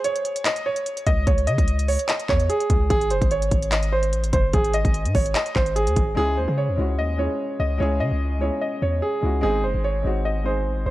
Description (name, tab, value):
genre	hip hop, trap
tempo	147 BPM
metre	4/4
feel	half-time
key	C# harmonic minor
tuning	A4 = 440 Hz
part	clear concert grand piano	melody	0.0-10.9 s	G#4 to D#5	-24 LUFS	right 2 dB	tape echo
part	trap drum kit	drums	0.0-6.1 s	handclaps, hi-hat, kick drum	-23 LUFS	equal	none
part	long sustained 808-style bass	bass	1.1-10.9 s	F#1 to C#3	-23 LUFS	equal	none
part	felt-muted upright piano	accompaniment	6.1-10.9 s	G#3 to G#4	-28 LUFS	left 3 dB	none
room	small room ambience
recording	none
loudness	-20 LUFS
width	side -16 dB against mid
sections	0.0-6.2 A section; 6.2-10.9 B section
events	break 0.0-0.5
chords	0.0 N.C.; 2.9 G#; 6.2 C#m; 9.4 G#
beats	0.05 0.45 0.86 | 1.27 1.68 2.09 2.50 | 2.90 3.31 3.72 4.13 | 4.54 4.94 5.35 5.76 | 6.17 6.58 6.98 7.39 | 7.80 8.21 8.62 9.03 | 9.43 9.84 10.25 10.66